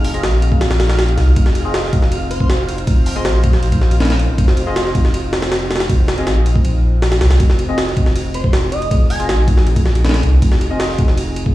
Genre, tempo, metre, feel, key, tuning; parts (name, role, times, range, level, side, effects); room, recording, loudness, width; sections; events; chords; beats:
drum and bass, jungle; 159 BPM; 4/4; straight; F minor; A4 = 440 Hz
warbly tape-like pad; sustained chords; 0.0-11.5 s; C4 to C5; -26 LUFS; left 1 dB; chorus, built-in reverb
soft dub sub bass; bass; 0.0-11.5 s; F1 to C2; -16 LUFS; equal
jungle sampler-style drum kit; drums; 0.0-11.5 s; hi-hat, kick drum, ride cymbal, snare drum; -16 LUFS; equal
wind-like tuned noise texture; texture; 0.0-7.4 s; F5; -33 LUFS; right 2 dB; built-in reverb
deep mellow chord stab; stabs; 0.1-10.8 s; C4 to Eb5; -26 LUFS; left 2 dB; chorus, cassette tape, dub echo
airy dreamy lead; melody; 2.3-3.5, 8.3-9.4 s; C5 to Ab5; -26 LUFS; equal; chorus, cassette tape, dub echo
little or no reverb; played on a big sound system in a bare room, large studio reverb, vinyl crackle, studio reverb; -12 LUFS; side -16 dB against mid
0.0-7.4 A section; 7.4-11.5 A section
drop 0.0-7.4, 7.4-11.5
0.0 Fm7
0.23 0.61 0.98 | 1.36 1.74 2.12 2.50 | 2.87 3.25 3.63 4.00 | 4.38 4.76 5.14 5.51 | 5.89 6.27 6.65 7.02 | 7.40 7.78 8.15 8.53 | 8.91 9.29 9.66 10.04 | 10.42 10.80 11.17